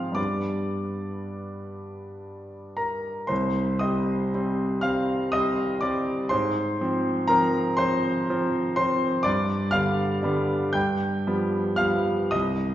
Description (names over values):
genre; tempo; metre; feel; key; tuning
classical; 35-42 BPM (dotted quarters); 6/8; rubato; unclear; A4 = 440 Hz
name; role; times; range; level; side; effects
bright concert grand piano; accompaniment; 0.0-12.7 s; C2 to G6; -23 LUFS; equal; none
room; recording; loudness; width
wet recital hall reverb, RT60 1.7 s; heard from further back in the room, nothing above 7.5 kHz; -22 LUFS; side -12 dB against mid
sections
0.0-12.7 A section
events
none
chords
0.2 G; 3.3 Cm; 6.3 Fm/Ab; 9.3 G; 10.8 G7